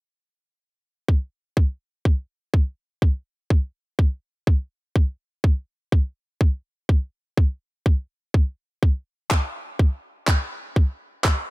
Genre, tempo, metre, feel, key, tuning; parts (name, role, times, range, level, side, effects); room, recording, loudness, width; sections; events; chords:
bass house; 124 BPM; 4/4; swing 61% on 16ths
electronic kick drum; drums; 1.1-11.4 s; -17 LUFS; equal; overdrive
electronic handclaps; drums; 9.3-11.4 s; -25 LUFS; equal; overdrive
digital ambience; -21 LUFS; side -21 dB against mid
1.1-11.5 A section